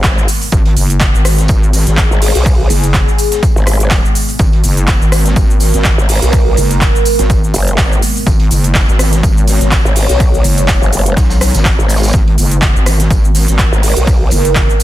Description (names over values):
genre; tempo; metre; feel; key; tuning
bass house; 124 BPM; 4/4; swing 56% on 16ths; G# minor; A4 = 443 Hz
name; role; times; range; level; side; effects
sweeping resonant pad; sustained chords; 0.0-14.8 s; G#3 to C#5; -20 LUFS; right 1 dB; chorus, sidechain pumping
growl bass; bass; 0.0-14.3 s; F#1 to B1; -13 LUFS; equal; chorus, tube saturation, sidechain pumping
big-room dance drum kit; drums; 0.0-14.8 s; handclaps, hi-hat, rim click, shaker; -17 LUFS; right 1 dB; overdrive
electronic kick drum; drums; 0.0-14.7 s; none; -12 LUFS; equal; overdrive
raw garage drum kit; drums; 0.0-14.8 s; hi-hat, snare drum, tambourine; -26 LUFS; right 2 dB; sidechain pumping on hats, high-pass filter on hats, high-pass filter on snare, sidechain pumping on perc, high-pass filter on perc, high-pass filter on room
wobble bass; bass; 0.5-14.7 s; F#1 to B1; -13 LUFS; equal; chorus, overdrive, sidechain pumping
room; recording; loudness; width
digital ambience; dense, heavily limited modern master; -9 LUFS; side -14 dB against mid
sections
0.0-14.8 A section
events
none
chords
0.0 G#madd9